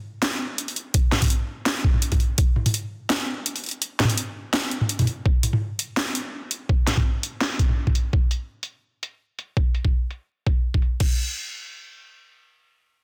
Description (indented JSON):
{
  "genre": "drum and bass",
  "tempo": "167 BPM",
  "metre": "4/4",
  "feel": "swing 55% on 16ths, half-time",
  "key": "none",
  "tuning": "none",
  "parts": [
    { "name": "drum and bass drum kit", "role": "drums", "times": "0.2-11.1 s", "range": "crash cymbal, hi-hat, snare drum, toms", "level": "-26 LUFS", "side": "equal", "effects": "overdrive, low-pass filter on toms, low-pass filter on hats, low-pass filter on snare, low-pass filter on cymbals, low-pass filter on room" },
    { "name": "electronic kick drum", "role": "drums", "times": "0.9-2.5, 5.3-11.1 s", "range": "none", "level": "-23 LUFS", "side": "equal", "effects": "none" }
  ],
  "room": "light reverb",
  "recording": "dense, heavily limited modern master",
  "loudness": "-24 LUFS",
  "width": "mono",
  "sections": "0.0-5.3 A section; 5.3-11.0 B section; 11.0-13.0 C section",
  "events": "drop 0.0-5.3; kick drops out 3.8-5.3; filter sweep on drum 5.3-11.0",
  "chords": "none"
}